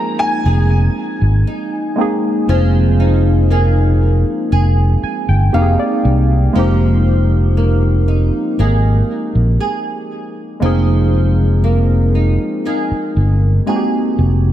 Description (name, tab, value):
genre	contemporary R&B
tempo	59 BPM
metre	4/4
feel	straight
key	unclear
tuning	A4 = 437 Hz
part	clear baby grand piano	melody	0.0-5.5 s	Ab5 to Bb5	-22 LUFS	equal	ensemble chorus, tape echo
part	muted felt-like synth keys	accompaniment	0.0-14.5 s	Ab3 to Ab5	-18 LUFS	right 1 dB	chorus
part	flamenco guitar	arpeggios	0.0-14.5 s	F3 to Ab4	-22 LUFS	equal	analog chorus, tape echo
part	fingered electric bass	bass	0.5-14.5 s	F1 to C2	-12 LUFS	equal	none
room	light reverb, small room ambience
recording	none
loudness	-12 LUFS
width	side -12 dB against mid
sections	0.0-6.6 A section; 6.6-14.5 B section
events	synth keys fill 4.5-6.6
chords	0.0 Fm11